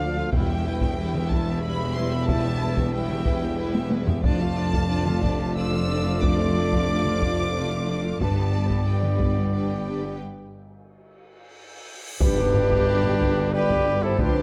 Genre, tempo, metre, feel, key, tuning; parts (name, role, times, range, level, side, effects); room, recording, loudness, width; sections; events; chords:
cinematic, epic orchestral film score; 91 BPM; 3/4; straight; A4 = 443 Hz
warm symphonic violin section; melody; 0.0-14.4 s; F5 to E6; -38 LUFS; equal
rich symphonic violin section; second line; 0.0-14.4 s; E4 to F5; -39 LUFS; equal
dark studio viola section; accompaniment; 0.0-14.4 s; E3 to G4; -35 LUFS; equal
mellow French horn section; sustained chords; 0.0-14.4 s; B3 to D5; -32 LUFS; equal
warm trombone section; sustained chords; 0.0-14.4 s; D3 to B3; -36 LUFS; equal
clear trumpet; stabs; 0.0-14.4 s; D4 to F5; -35 LUFS; equal
dark symphonic double bass section; bass; 0.0-14.4 s; E1 to D2; -32 LUFS; equal
mellow tuba; bass; 0.0-14.4 s; E1 to D2; -33 LUFS; equal
rich symphonic cello section; bass; 0.0-14.4 s; D2 to G2; -32 LUFS; equal
taiko ensemble; drums; 0.3-14.4 s; -29 LUFS; equal
timpani; percussion; 0.3-1.3 s; E2; -34 LUFS; equal
cymbal swell and tam-tam; percussion; 8.2-14.4 s; -39 LUFS; equal
cymbal swell and impact; sound effects; 11.7-14.2 s; -36 LUFS; equal
silver concert flute; second line; 12.2-14.4 s; G4 to B4; -36 LUFS; equal
light reverb; close, detailed microphones; -23 LUFS; mono
0.0-12.2 A section; 12.2-14.4 B section
drum fill 3.8-4.2, 11.7-12.2; break 10.2-12.2; cymbal swell 11.7-12.2; band accent 12.2-12.9; impact 12.2-14.2
0.3 Em; 4.2 Dm/F; 8.2 G